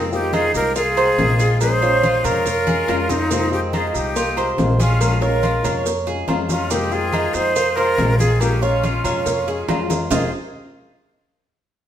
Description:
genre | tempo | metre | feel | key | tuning
latin, Cuban son and guajira | 141 BPM | 4/4 | straight | F minor | A4 = 440 Hz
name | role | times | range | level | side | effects
breathy hollow jazz flute | melody | 0.0-10.3 s | Eb4 to C5 | -21 LUFS | right 1 dB | none
bright trumpet | second line | 0.0-10.3 s | C4 to Ab4 | -28 LUFS | left 6 dB | none
flamenco guitar | accompaniment | 0.0-10.3 s | F2 to F4 | -26 LUFS | left 5 dB | none
Cuban tres | arpeggios | 0.0-10.3 s | C4 to Eb5 | -24 LUFS | right 3 dB | none
upright bass | bass | 0.0-10.3 s | F1 to F2 | -23 LUFS | equal | none
congas | percussion | 0.1-10.2 s | none | -27 LUFS | equal | none
maracas | percussion | 0.1-10.2 s | none | -33 LUFS | right 7 dB | none
cowbell and bongos | percussion | 0.3-10.2 s | none | -30 LUFS | left 2 dB | none
timbales and agogo bells | percussion | 0.3-10.2 s | none | -28 LUFS | equal | none
room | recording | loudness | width
wet stone room reverb, RT60 1.2 s | band playing live in one room | -16 LUFS | side -10 dB against mid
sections
0.0-10.1 A section; 10.1-11.8 B section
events
drum fill 2.7-3.3, 9.7-10.1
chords
0.0 Fm7; 1.6 Bbm7; 3.3 Fm7; 5.0 Bbm7; 6.7 Fm7; 8.4 Bbm7; 10.1 F7(no3)

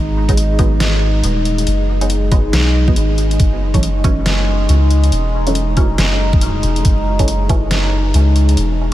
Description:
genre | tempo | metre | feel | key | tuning
deep dubstep | 139 BPM | 4/4 | swing 60% on 16ths, half-time | unclear | A4 = 440 Hz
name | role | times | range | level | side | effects
overtone-sweeping drone | sustained chords | 0.0-8.9 s | G#3 to D#4 | -20 LUFS | equal | chorus, built-in reverb
soft dub sub bass | bass | 0.0-8.9 s | D#1 to C#2 | -15 LUFS | equal | none
filtered dub chord stab | stabs | 0.3-7.7 s | E3 to D#4 | -24 LUFS | right 2 dB | phaser, analog chorus, dub echo
dubstep drum kit | drums | 0.3-8.7 s | hi-hat, snare drum | -22 LUFS | equal | none
electronic kick drum | drums | 0.3-7.6 s | none | -14 LUFS | equal | none
room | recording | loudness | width
light reverb | vinyl crackle | -12 LUFS | side -14 dB against mid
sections
0.0-8.9 A section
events
none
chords
0.0 G#m7; 3.4 F#m7

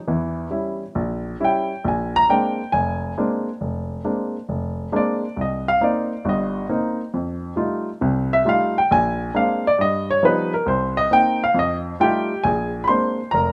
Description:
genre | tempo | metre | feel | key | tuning
solo jazz | 136 BPM | 4/4 | swing 67% on 8ths | Bb mixolydian | A4 = 441 Hz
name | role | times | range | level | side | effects
dark baby grand piano | solo | 0.1-13.5 s | F1 to C6 | -21 LUFS | equal | none
room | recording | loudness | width
light reverb, studio reverb | rough home demo mix | -21 LUFS | mono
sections
0.0-12.4 A section; 12.4-13.5 B section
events
grand piano solo 0.0-12.4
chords
0.1 Edim7; 1.8 Bb9; 5.4 Cm7; 7.1 F9; 8.9 Bb9; 9.8 Gaug7; 10.7 Cm7; 11.6 F9; 12.4 Bb9

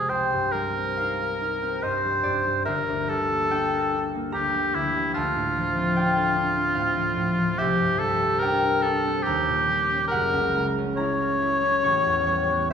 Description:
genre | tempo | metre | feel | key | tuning
classical, impressionist duo for oboe and harp | 68-78 BPM | 3/4 | rubato | unclear | A4 = 440 Hz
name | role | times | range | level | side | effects
clear oboe | melody | 0.0-12.7 s | E4 to C#5 | -23 LUFS | equal | none
concert harp | accompaniment | 0.0-12.7 s | F#1 to C#6 | -26 LUFS | left 1 dB | none
room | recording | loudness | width
wet recital hall reverb, RT60 1.5 s | heard from further back in the room | -21 LUFS | side -7 dB against mid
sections
0.0-12.7 A section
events
none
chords
0.1 Cm7; 2.7 Gm6; 5.2 Dm7; 7.6 C9; 9.3 Eb7; 10.1 F#9; 11.8 A9

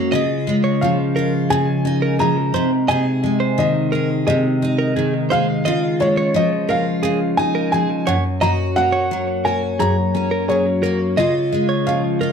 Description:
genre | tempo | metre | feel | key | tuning
acoustic pop | 87 BPM | 4/4 | straight | Db major | A4 = 439 Hz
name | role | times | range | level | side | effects
dark upright piano | melody | 0.0-12.3 s | Db5 to Bb5 | -22 LUFS | equal | tape echo
picked steel-string acoustic guitar | accompaniment | 0.0-12.3 s | Gb2 to Ab4 | -18 LUFS | left 1 dB | double-tracked left and right
dark French horn section | sustained chords | 0.1-12.3 s | Gb2 to Eb5 | -30 LUFS | left 1 dB | none
direct-recorded clean electric guitar | arpeggios | 0.1-12.3 s | Ab4 to Eb5 | -25 LUFS | right 4 dB | tape echo
room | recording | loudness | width
wet studio reverb, RT60 0.8 s | dark, warm production | -16 LUFS | side -6 dB against mid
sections
0.1-12.3 A section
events
none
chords
0.1 Dbadd9; 2.5 Ab/C; 5.7 Dbadd9; 8.1 Gb; 11.2 Dbadd9

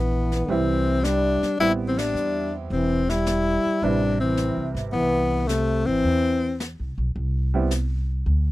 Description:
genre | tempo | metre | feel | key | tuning
jazz, small-group swing and bop | 108 BPM | 4/4 | swing 69% on 8ths | A minor | A4 = 440 Hz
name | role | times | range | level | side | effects
warm tenor saxophone | melody | 0.0-6.6 s | A3 to E4 | -23 LUFS | left 3 dB | none
breathy trombone | second line | 0.0-6.6 s | C3 to G3 | -27 LUFS | right 2 dB | none
upright bass | bass | 0.0-8.5 s | E1 to E2 | -25 LUFS | equal | none
jazz brush drum kit | drums | 0.3-8.5 s | brushed snare drum, hi-hat, ride cymbal, snare drum | -33 LUFS | left 2 dB | none
clear upright piano | accompaniment | 0.5-7.7 s | C3 to B4 | -29 LUFS | right 5 dB | none
room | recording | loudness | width
little or no reverb | dry, close 1970s-style studio recording | -21 LUFS | side -17 dB against mid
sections
0.0-8.5 A section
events
band accent 1.9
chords
0.0 Am7

